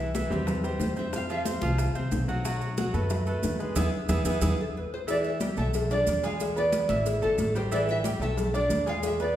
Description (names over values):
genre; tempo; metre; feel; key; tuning
latin, salsa; 182 BPM; 4/4; straight; A minor; A4 = 435 Hz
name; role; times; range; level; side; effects
bright grand piano; accompaniment; 0.0-9.4 s; E3 to E6; -31 LUFS; right 1 dB; none
upright bass; bass; 0.0-9.4 s; G1 to F#2; -30 LUFS; equal; none
bongos and cowbell; percussion; 0.1-9.2 s; none; -35 LUFS; left 2 dB; none
congas; percussion; 0.1-9.4 s; none; -34 LUFS; equal; none
maracas; percussion; 0.2-9.4 s; none; -42 LUFS; right 6 dB; none
nylon-string guitar; melody; 0.3-1.8, 4.6-9.4 s; A4 to F5; -29 LUFS; equal; none
room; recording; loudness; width
wet recital hall reverb, RT60 1.6 s; recorded in a church or concert hall; -25 LUFS; side -12 dB against mid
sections
0.0-5.1 A section; 5.1-9.4 B section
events
band accent 3.8-5.1; drum fill 4.4-5.1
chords
0.0 C; 1.1 F5; 2.4 B5; 3.8 E; 5.1 A5; 5.7 E7b9/B; 6.4 E7; 7.1 A5; 8.4 E7b9/B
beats
0.14 0.47 0.80 | 1.13 1.46 1.79 2.12 | 2.45 2.77 3.10 3.43 | 3.76 4.09 4.42 4.75 | 5.08 5.41 5.74 6.07 | 6.40 6.73 7.06 7.39 | 7.71 8.04 8.37 8.70 | 9.03